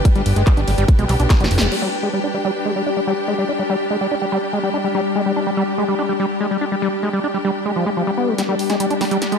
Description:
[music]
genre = psychedelic trance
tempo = 144 BPM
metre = 4/4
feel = straight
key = G major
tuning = A4 = 440 Hz
[part]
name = evolving wavetable pad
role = sustained chords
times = 0.0-9.4 s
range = G3 to B4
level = -23 LUFS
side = left 2 dB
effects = chorus, built-in reverb, vintage 12-bit sampler grit, sidechain pumping
[part]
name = clear studio string section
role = texture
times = 0.0-9.4 s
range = D4 to G5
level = -26 LUFS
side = left 2 dB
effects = sidechain pumping
[part]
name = overdriven acid bass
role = riff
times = 0.1-9.4 s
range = F3 to D4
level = -21 LUFS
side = moving between left 4 dB and right 5 dB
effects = auto-pan, sidechain pumping, dub echo
[part]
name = big-room dance drum kit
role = drums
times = 0.1-1.8, 8.4-9.4 s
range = crash cymbal, handclaps, hi-hat, ride cymbal, snare drum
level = -24 LUFS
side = equal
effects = high-pass filter on hats, small room ambience, high-pass filter on cymbals, high-pass filter on snare
[part]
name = electronic kick drum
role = drums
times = 0.1-1.4 s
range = none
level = -13 LUFS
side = equal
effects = small room ambience
[part]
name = fat analog bass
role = bass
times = 0.2-1.7 s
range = F1 to B1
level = -18 LUFS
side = equal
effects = none
[sound]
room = moderate lush hall reverb, RT60 1.7 s, digital ambience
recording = dark, warm production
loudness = -16 LUFS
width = side -6 dB against mid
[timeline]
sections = 0.0-1.7 A section; 1.7-8.4 B section; 8.4-9.4 C section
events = drop 0.0-1.7; drum fill 1.3-1.7, 8.4-9.4; band accent 1.6; filter sweep on acid bass 1.7-8.4; build-up 8.4-9.4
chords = 0.0 G5

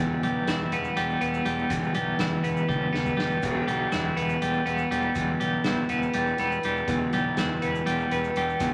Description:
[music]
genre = psychedelic rock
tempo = 243 BPM (eighths)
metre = 7/8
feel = straight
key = E minor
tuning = A4 = 436 Hz
[part]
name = twelve-string electric guitar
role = riff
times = 0.0-8.7 s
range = E2 to B3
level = -27 LUFS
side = equal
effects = tremolo
[part]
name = fuzz fingered electric bass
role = bass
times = 0.0-8.7 s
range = E1 to B1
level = -36 LUFS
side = equal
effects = overdrive
[part]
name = soft-mallet drum kit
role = drums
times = 0.2-8.7 s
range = crash cymbal, hi-hat, kick drum, snare drum, toms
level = -35 LUFS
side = equal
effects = none
[part]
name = egg shaker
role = percussion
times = 0.5-8.7 s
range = none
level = -58 LUFS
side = equal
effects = none
[sound]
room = moderate large studio reverb, RT60 1.2 s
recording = vinyl crackle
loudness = -26 LUFS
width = mono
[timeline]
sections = 0.0-8.7 A section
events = drum fill 2.7-3.4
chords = 0.0 Em

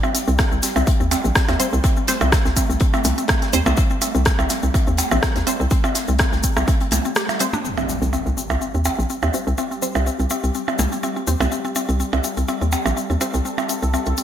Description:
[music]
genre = minimal techno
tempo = 124 BPM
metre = 4/4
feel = swing 54% on 16ths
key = C dorian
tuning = A4 = 440 Hz
[part]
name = mallet-like synth pluck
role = riff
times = 0.0-14.2 s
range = C4 to G4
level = -25 LUFS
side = left 1 dB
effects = chorus, sidechain pumping, digital delay
[part]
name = cabasa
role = percussion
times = 0.0-14.2 s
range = none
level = -29 LUFS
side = left 6 dB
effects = none
[part]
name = percussion blips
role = percussion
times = 0.0-14.0 s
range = none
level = -26 LUFS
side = right 3 dB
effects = ping-pong delay
[part]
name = swarming drone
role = texture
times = 0.0-14.2 s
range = G3 to A4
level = -31 LUFS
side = right 2 dB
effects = built-in reverb, sidechain pumping
[part]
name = house drum kit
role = drums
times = 0.1-14.2 s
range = hi-hat, rim click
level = -24 LUFS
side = equal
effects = low-pass filter on hats, low-pass filter on snare
[part]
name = modern studio drum kit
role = drums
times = 0.1-14.2 s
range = hi-hat, snare drum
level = -34 LUFS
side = left 3 dB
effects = high-pass filter on hats, low-pass filter on hats, high-pass filter on snare, low-pass filter on snare, high-pass filter on room, low-pass filter on room
[part]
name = hollow knocking FM bass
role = bass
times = 0.3-14.1 s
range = Bb1 to Eb2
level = -20 LUFS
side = equal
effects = sidechain pumping
[part]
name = electronic kick drum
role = drums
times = 0.4-6.8 s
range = none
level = -19 LUFS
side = equal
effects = none
[part]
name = filtered dub chord stab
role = stabs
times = 1.6-13.3 s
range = G3 to C5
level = -28 LUFS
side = right 3 dB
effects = phaser, ping-pong delay
[part]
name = impact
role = sound effects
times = 7.6-9.6 s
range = none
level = -31 LUFS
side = right 1 dB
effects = none
[sound]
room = light reverb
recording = bright 1980s-style digital production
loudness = -17 LUFS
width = side -10 dB against mid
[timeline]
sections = 0.0-7.6 A section; 7.6-14.2 B section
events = impact 7.6-9.6; filter sweep on drum 7.6-14.2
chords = 0.0 C5

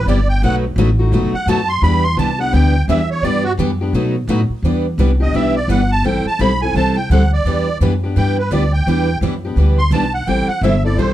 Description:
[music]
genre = acoustic string swing (jazz manouche)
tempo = 170 BPM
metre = 4/4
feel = swing 60% on 8ths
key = E minor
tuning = A4 = 440 Hz
[part]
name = musette accordion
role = melody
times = 0.0-11.1 s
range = F#4 to C6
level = -20 LUFS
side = right 2 dB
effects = none
[part]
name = upright bass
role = bass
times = 0.0-11.1 s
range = F#1 to B2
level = -16 LUFS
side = equal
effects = none
[part]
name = picked steel-string acoustic guitar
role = accompaniment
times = 0.1-11.1 s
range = B2 to A4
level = -20 LUFS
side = left 4 dB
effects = none
[part]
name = picked steel-string acoustic guitar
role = accompaniment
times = 0.1-11.1 s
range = B2 to B4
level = -23 LUFS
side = right 6 dB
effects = none
[sound]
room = light reverb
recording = dark, warm production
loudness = -13 LUFS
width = side -13 dB against mid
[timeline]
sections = 0.0-4.6 A section; 4.6-11.1 A section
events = accordion solo 0.0-11.1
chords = 0.4 B7; 1.8 Em9; 3.9 B7; 4.6 Em7; 6.0 Am9; 7.5 Em9; 10.3 Am9

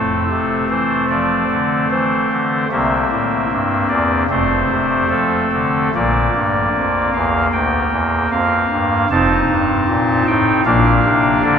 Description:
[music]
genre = classical, chorale-style piece for pipe organ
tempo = 76 BPM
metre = 4/4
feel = rubato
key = F major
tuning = A4 = 440 Hz
[part]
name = pipe organ, soft reed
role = solo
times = 0.0-11.6 s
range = F1 to A5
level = -14 LUFS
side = equal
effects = none
[sound]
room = wet cathedral reverb, RT60 5.5 s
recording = heard from further back in the room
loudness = -14 LUFS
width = side -7 dB against mid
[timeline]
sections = 0.0-11.6 A section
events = none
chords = 0.0 F; 2.7 C7; 4.3 F; 5.9 Bb; 9.1 F7; 10.7 Bb

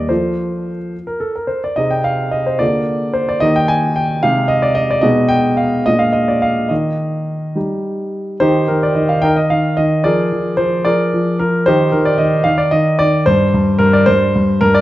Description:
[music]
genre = classical-period piano sonatina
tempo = 73 BPM (dotted quarters)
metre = 6/8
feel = straight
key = Eb major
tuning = A4 = 440 Hz
[part]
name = warm grand piano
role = solo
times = 0.0-14.8 s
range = Eb2 to Ab5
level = -13 LUFS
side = equal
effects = none
[sound]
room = moderate recital hall reverb, RT60 1.8 s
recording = dark, warm production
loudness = -13 LUFS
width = side -15 dB against mid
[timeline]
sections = 0.0-8.4 A section; 8.4-14.8 B section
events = none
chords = 0.1 F; 1.8 Ab/C; 2.6 Bb7/D; 3.4 Eb; 4.2 Ab/C; 5.0 Abm/Cb; 5.9 Bb7; 6.7 Eb; 10.0 Bb7/F; 11.7 Eb; 13.3 N.C.

